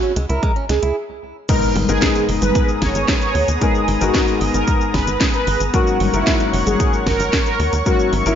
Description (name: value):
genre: italo disco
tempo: 113 BPM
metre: 4/4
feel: straight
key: G# minor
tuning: A4 = 440 Hz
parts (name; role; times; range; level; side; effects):
- mellow synth brass; melody; 0.0-8.4 s; E4 to C#5; -21 LUFS; right 1 dB; chorus, phaser, ping-pong delay
- lush unison pad; sustained chords; 0.0-8.4 s; B3 to E6; -25 LUFS; right 1 dB; chorus
- direct-recorded clean electric guitar; arpeggios; 0.0-1.0 s; G#3 to E4; -29 LUFS; right 3 dB; digital delay
- house drum kit; drums; 0.0-8.4 s; cabasa, congas, crash cymbal, handclaps, hi-hat, snare drum; -23 LUFS; equal; studio reverb
- tight sequencer bass; bass; 0.2-8.4 s; F#1 to D#2; -21 LUFS; equal; none
- electronic kick drum; drums; 0.4-8.0 s; none; -20 LUFS; equal; studio reverb
- dark concert grand piano; stabs; 1.5-8.4 s; G#2 to A#4; -22 LUFS; left 6 dB; none
- impact; sound effects; 1.5-3.6 s; none; -28 LUFS; equal; none
room: light reverb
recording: nothing above 7.5 kHz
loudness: -15 LUFS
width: side -9 dB against mid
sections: 0.0-1.5 A section; 1.5-8.4 B section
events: stop 1.0-1.5; impact 1.5-3.6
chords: 0.0 C#m7; 1.5 G#madd9; 5.7 F#